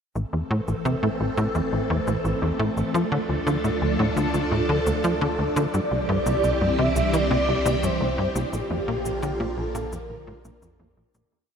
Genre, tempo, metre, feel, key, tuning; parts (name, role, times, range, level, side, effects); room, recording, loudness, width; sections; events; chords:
ambient, sequencer-driven space music; 86 BPM; 4/4; straight; A4 = 441 Hz
phased string machine; sustained chords; 0.2-11.3 s; D3 to A4; -26 LUFS; equal; ensemble chorus, phaser
tight sequencer bass; riff; 0.2-11.2 s; A1 to F3; -25 LUFS; equal; analog chorus, analog delay
warm sub bass; bass; 0.2-11.3 s; A1 to D2; -34 LUFS; equal
cabasa and congas; percussion; 0.2-11.3 s; -37 LUFS; right 1 dB; overdrive, analog delay
wind-like tuned noise texture; texture; 2.5-11.3 s; D4 to D5; -39 LUFS; right 1 dB
expressive portamento lead; melody; 5.7-11.0 s; G4 to E5; -26 LUFS; right 1 dB; ensemble chorus, analog delay
moderate huge ambient reverb, RT60 8.0 s; -21 LUFS; side -7 dB against mid
0.2-11.3 A section
fade-in on sub bass 0.2-11.3; fade-in on drum 0.2-11.3; fade-out 7.6-11.3
0.2 Am; 2.9 Dm; 5.7 C; 8.5 Bb